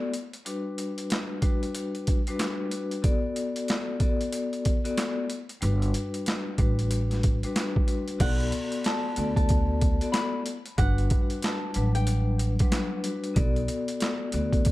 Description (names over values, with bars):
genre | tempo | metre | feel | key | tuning
hip hop, boom-bap hip-hop | 93 BPM | 4/4 | swing 62% on 16ths | B minor | A4 = 440 Hz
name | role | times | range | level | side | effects
vibraphone with medium hard mallets | accompaniment | 0.0-14.7 s | F#3 to D5 | -30 LUFS | left 3 dB | high-pass filter, low-pass filter
boom bap sampler-style drum kit | drums | 0.1-14.7 s | crash cymbal, handclaps, hi-hat, kick drum, snare drum | -27 LUFS | equal | overdrive
upright bass | bass | 5.6-14.7 s | G1 to D2 | -27 LUFS | right 1 dB | none
flamenco guitar | melody | 8.2-12.9 s | F#5 to B5 | -34 LUFS | equal | high-pass filter, low-pass filter, tape echo
room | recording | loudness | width
little or no reverb | dark, warm production | -24 LUFS | side -17 dB against mid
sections
0.0-8.2 A section; 8.2-14.7 B section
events
none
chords
0.5 Gmaj7; 3.0 Bm7; 5.6 Gmaj7; 8.2 Bm7; 10.8 Gmaj7; 13.4 Bm7